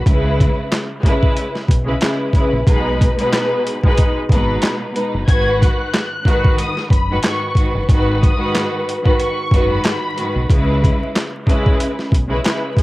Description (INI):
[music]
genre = hip hop, boom-bap hip-hop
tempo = 92 BPM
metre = 4/4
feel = swing 56% on 16ths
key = unclear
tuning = A4 = 440 Hz
[part]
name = warm symphonic violin section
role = melody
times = 0.0, 5.3-10.5 s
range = B5 to G#6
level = -25 LUFS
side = left 2 dB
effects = high-pass filter, low-pass filter, cassette tape, tape echo
[part]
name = warm studio string section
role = accompaniment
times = 0.0-12.8 s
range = G#2 to B4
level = -19 LUFS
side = equal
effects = high-pass filter, low-pass filter, cassette tape
[part]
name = deep dub fingered electric bass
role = bass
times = 0.0-12.4 s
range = F#1 to C#2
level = -20 LUFS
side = equal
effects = none
[part]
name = boom bap sampler-style drum kit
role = drums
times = 0.1-12.8 s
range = handclaps, hi-hat, kick drum, snare drum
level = -15 LUFS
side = equal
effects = none
[sound]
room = light reverb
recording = home recording on cassette, vinyl crackle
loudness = -14 LUFS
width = side -19 dB against mid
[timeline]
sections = 0.0-12.8 A section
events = none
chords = 0.1 C#m7; 2.7 B6; 10.5 C#m7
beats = | 0.06 0.71 1.37 2.02 | 2.67 3.32 3.97 4.63 | 5.28 5.93 6.58 7.24 | 7.89 8.54 9.19 9.84 | 10.50 11.15 11.80 12.45